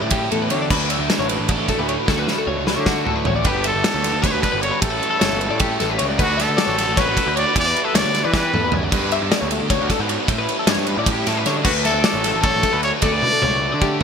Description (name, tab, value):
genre	math rock and midwest emo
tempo	307 BPM (eighths)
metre	7/8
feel	straight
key	D major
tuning	A4 = 440 Hz
part	twelve-string electric guitar	accompaniment	0.0-4.8 s	D2 to A4	-29 LUFS	right 9 dB	lush chorus
part	twelve-string electric guitar	arpeggios	0.0-14.0 s	F#4 to E5	-24 LUFS	left 7 dB	analog chorus, ping-pong delay
part	biting overdriven guitar	riff	0.0-14.0 s	G2 to F#4	-26 LUFS	right 1 dB	none
part	fuzz picked electric bass	bass	0.0-14.0 s	G1 to E3	-25 LUFS	equal	overdrive
part	loose indie drum kit	drums	0.1-14.0 s	crash cymbal, kick drum, ride cymbal, snare drum, toms	-21 LUFS	right 1 dB	gated reverb
part	breathy trumpet	melody	3.5-8.8, 11.6-14.0 s	F#4 to D5	-21 LUFS	equal	none
room	light reverb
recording	bright 1980s-style digital production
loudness	-16 LUFS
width	side -6 dB against mid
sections	0.0-3.5 A section; 3.5-14.0 B section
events	drum fill 2.1-3.5, 8.3-8.9, 13.2-14.0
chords	0.0 A7sus4; 0.7 D6; 2.1 Dmaj7; 3.5 Gadd9; 6.2 D6; 7.6 Em9; 8.9 Gadd9; 10.3 A7sus4; 11.7 D6; 13.0 Dmaj7